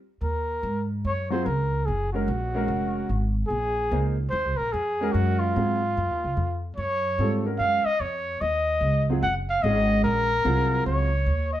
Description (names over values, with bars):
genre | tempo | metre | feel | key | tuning
modal jazz | 146 BPM | 4/4 | swing 64% on 8ths | Eb dorian | A4 = 440 Hz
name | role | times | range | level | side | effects
breathy trumpet | melody | 0.2-11.6 s | F4 to Gb5 | -26 LUFS | left 1 dB | none
upright bass | bass | 0.2-11.6 s | F1 to Ab2 | -26 LUFS | right 1 dB | none
warm concert grand piano | accompaniment | 1.3-11.1 s | Gb3 to C5 | -28 LUFS | right 1 dB | none
room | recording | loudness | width
moderate studio reverb, RT60 0.8 s | band playing live in one room | -22 LUFS | side -12 dB against mid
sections
0.2-11.6 A section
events
break 0.0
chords
0.2 Ebm9